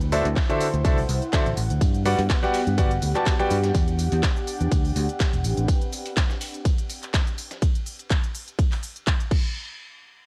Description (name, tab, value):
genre	piano house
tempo	124 BPM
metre	4/4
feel	swing 54% on 16ths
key	A dorian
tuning	A4 = 440 Hz
part	fingered electric bass	bass	0.0-5.7 s	E1 to G2	-26 LUFS	equal	tube saturation, sidechain pumping
part	house drum kit	drums	0.0-9.4 s	crash cymbal, handclaps, hi-hat, ride cymbal, shaker	-36 LUFS	equal	studio reverb, cassette tape
part	airy breathy pad	texture	0.0-5.7 s	B3 to G5	-34 LUFS	equal	chorus, sidechain pumping, cassette tape
part	clear concert grand piano	riff	0.1-3.6 s	D3 to A5	-27 LUFS	equal	sidechain pumping, cassette tape, tape echo
part	dusty soul sampler-style drum kit	drums	0.1-7.6 s	hi-hat, snare drum, tambourine	-38 LUFS	equal	high-pass filter on perc, studio reverb, cassette tape, high-pass filter on snare, high-pass filter on hats
part	electronic kick drum	drums	0.4-9.4 s	none	-25 LUFS	equal	studio reverb, cassette tape
room	little or no reverb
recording	home recording on cassette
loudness	-23 LUFS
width	mono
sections	0.0-9.6 A section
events	drop 0.0-9.6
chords	0.0 D9; 1.8 Gmaj7; 3.7 Em9; 5.4 Am9; 7.6 N.C.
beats	0.36 0.85 1.33 | 1.81 2.30 2.78 3.27 | 3.75 4.23 4.72 5.20 | 5.68 6.17 6.65 7.14 | 7.62 8.10 8.59 9.07